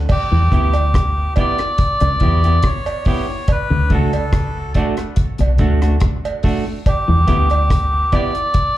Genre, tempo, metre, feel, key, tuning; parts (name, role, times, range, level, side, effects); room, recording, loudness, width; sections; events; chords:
roots reggae; 71 BPM; 4/4; straight; E dorian; A4 = 438 Hz
deep dub fingered electric bass; bass; 0.0-8.0 s; B1 to E2; -16 LUFS; equal
melodica; melody; 0.1-8.8 s; G4 to D5; -20 LUFS; equal; dub echo, plate reverb, slapback echo
deep reggae drum kit; drums; 0.1-8.8 s; crash cymbal, hi-hat, kick drum, rim click; -18 LUFS; equal
cowbell; percussion; 0.1-8.3 s; -26 LUFS; right 6 dB; slapback echo
clean electric guitar; riff; 0.3-7.5 s; B2 to E3; -25 LUFS; left 5 dB
semi-hollow electric guitar; accompaniment; 0.5-8.3 s; A3 to G4; -24 LUFS; right 3 dB; dub echo, plate reverb, slapback echo
little or no reverb; live gig heard through the venue's PA, club reverb; -14 LUFS; side -14 dB against mid
0.1-8.8 A section
0.1 Em; 3.5 D; 6.9 Em